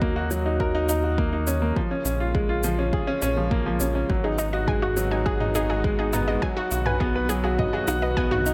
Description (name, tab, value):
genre	piano and strings electronica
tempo	103 BPM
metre	4/4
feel	straight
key	G# dorian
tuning	A4 = 439 Hz
part	lush unison pad	sustained chords	0.0-8.5 s	C#3 to F#4	-38 LUFS	equal	none
part	bright upright piano	riff	0.0-8.5 s	E#3 to D#5	-27 LUFS	equal	digital delay
part	round analog bass	bass	0.0-8.5 s	G#1 to D#2	-30 LUFS	equal	sidechain pumping
part	electronic kick drum	drums	0.0-8.3 s	none	-30 LUFS	equal	overdrive
part	electronic shaker and toms	drums	0.3-8.5 s	none	-35 LUFS	equal	overdrive
part	unison pluck	arpeggios	4.2-8.4 s	D#4 to G#5	-33 LUFS	equal	sidechain pumping, digital delay
room	light reverb, digital ambience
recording	none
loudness	-24 LUFS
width	mono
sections	0.0-8.5 A section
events	none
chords	0.0 D#m7; 1.8 A#m7; 4.1 G#m7; 6.4 B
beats	0.01 0.60 1.18 | 1.76 2.35 2.93 3.51 | 4.09 4.67 5.26 5.84 | 6.42 7.00 7.59 8.17